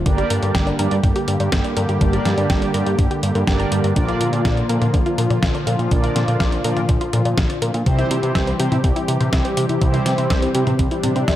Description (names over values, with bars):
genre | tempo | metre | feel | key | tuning
italo disco | 123 BPM | 4/4 | straight | unclear | A4 = 440 Hz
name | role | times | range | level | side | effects
warm analog pad | sustained chords | 0.0-11.4 s | D3 to G4 | -23 LUFS | equal | chorus
fat analog bass | bass | 0.0-11.4 s | G1 to C3 | -22 LUFS | equal | none
wide unison pluck | arpeggios | 0.1-11.3 s | C4 to Bb5 | -28 LUFS | left 1 dB | tape echo
mellow synth brass | stabs | 0.1-11.4 s | Bb2 to D5 | -25 LUFS | right 2 dB | chorus, tape echo
detuned 8-bit digital drum machine | drums | 0.1-11.4 s | hi-hat, snare drum, toms | -25 LUFS | equal | gated reverb
electronic kick drum | drums | 0.1-11.4 s | none | -20 LUFS | equal | none
swell | sound effects | 10.9-11.4 s | none | -26 LUFS | right 1 dB | none
room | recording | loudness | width
light reverb | none | -16 LUFS | side -13 dB against mid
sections
0.0-11.4 A section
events
swell 10.9-11.4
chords
0.1 Gm; 4.0 Bb; 7.9 C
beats
| 0.06 0.55 1.04 1.52 | 2.01 2.50 2.99 3.48 | 3.96 4.45 4.94 5.43 | 5.91 6.40 6.89 7.38 | 7.87 8.35 8.84 9.33 | 9.82 10.30 10.79 11.28